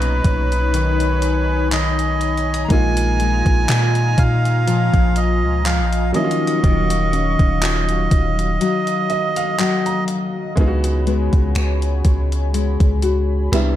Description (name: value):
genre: contemporary R&B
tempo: 61 BPM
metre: 4/4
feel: swing 54% on 16ths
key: unclear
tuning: A4 = 445 Hz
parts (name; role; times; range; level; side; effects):
- melodica; melody; 0.0-10.0 s; B4 to A#5; -23 LUFS; right 2 dB; ping-pong delay
- clear concert grand piano; accompaniment; 0.0-13.8 s; A#2 to Bb5; -26 LUFS; right 3 dB; none
- warm analog pad; sustained chords; 0.0-13.8 s; Gb3 to Eb6; -27 LUFS; equal; chorus
- nylon-string guitar; arpeggios; 0.0-13.8 s; Bb2 to Gb4; -23 LUFS; left 6 dB; none
- long sustained 808-style bass; bass; 0.0-13.8 s; Eb1 to Bb2; -19 LUFS; equal; none
- gated 80s digital drum machine; drums; 0.0-13.8 s; finger snaps, handclaps, hi-hat, kick drum; -20 LUFS; equal; gated reverb, overdrive
room: little or no reverb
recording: dark, warm production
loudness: -15 LUFS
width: side -12 dB against mid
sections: 0.0-10.6 A section; 10.6-13.8 B section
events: break 8.6-10.6; grand piano fill 8.6-10.6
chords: 0.0 Bmaj9; 2.7 Bb7sus4; 6.1 Ebm9; 10.6 Db7sus4